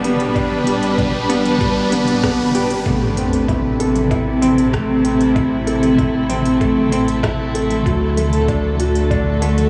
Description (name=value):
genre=piano and strings electronica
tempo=96 BPM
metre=4/4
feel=straight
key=A dorian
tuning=A4 = 436 Hz
part: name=dark studio string section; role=sustained chords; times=0.0-9.7 s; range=B2 to B4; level=-20 LUFS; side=equal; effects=sidechain pumping
part: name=warm upright piano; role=riff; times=0.0-9.7 s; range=F#3 to A4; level=-22 LUFS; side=equal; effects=tape echo
part: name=warm sub bass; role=bass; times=0.0-9.7 s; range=G1 to D2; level=-26 LUFS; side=equal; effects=sidechain pumping
part: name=organic electronic drum kit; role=drums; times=0.0-9.7 s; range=hi-hat, rim click, toms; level=-30 LUFS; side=equal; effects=none
part: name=riser and sub drop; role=sound effects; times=0.0-5.4 s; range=none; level=-30 LUFS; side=equal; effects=none
part: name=electronic kick drum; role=drums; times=0.4-9.2 s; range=none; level=-24 LUFS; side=equal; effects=none
room=wet huge ambient reverb, RT60 8.4 s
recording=dreamy mix soaked in reverb, studio ambience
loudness=-17 LUFS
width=mono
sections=0.0-2.9 A section; 2.9-9.7 B section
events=build-up 0.0-2.9; riser 0.0-2.9; drop 2.9-9.7; impact 2.9-5.4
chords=0.0 G; 2.9 Am; 7.9 D